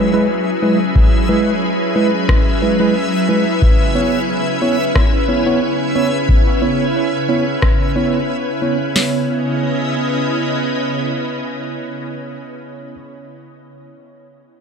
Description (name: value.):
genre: ambient dub.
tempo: 90 BPM.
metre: 4/4.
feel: straight.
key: C# minor.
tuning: A4 = 442 Hz.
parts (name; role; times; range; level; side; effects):
soft additive organ-like pad; sustained chords; 0.0-12.4 s; C#3 to D#5; -19 LUFS; equal; ensemble chorus, built-in reverb.
mellow tine electric piano; stabs; 0.0-12.9 s; G#3 to C#5; -19 LUFS; right 2 dB; medium stereo tremolo, low-pass filter, dub echo.
backwards swelling texture; texture; 0.0-9.0 s; E4 to E5; -26 LUFS; left 1 dB; built-in reverb.
booming analog drum machine; drums; 1.0-9.1 s; hi-hat, kick drum, snare drum; -14 LUFS; left 1 dB; none.
electronic rim click; drums; 2.3-7.8 s; none; -25 LUFS; left 1 dB; low-pass filter on perc, low-pass filter on snare, dub echo.
room: moderate echo chamber reverb, RT60 1.9 s.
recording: none.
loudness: -14 LUFS.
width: side -6 dB against mid.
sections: 0.0-9.0 A section; 9.0-11.6 B section.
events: filter sweep on tine electric piano 0.0-9.0.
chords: 0.0 F#9sus4; 3.6 C#m7.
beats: 0.29 | 0.95 1.62 2.29 2.96 | 3.62 4.29 4.96 5.62 | 6.29 6.96 7.62 8.29 | 8.96 9.62 10.29 10.96.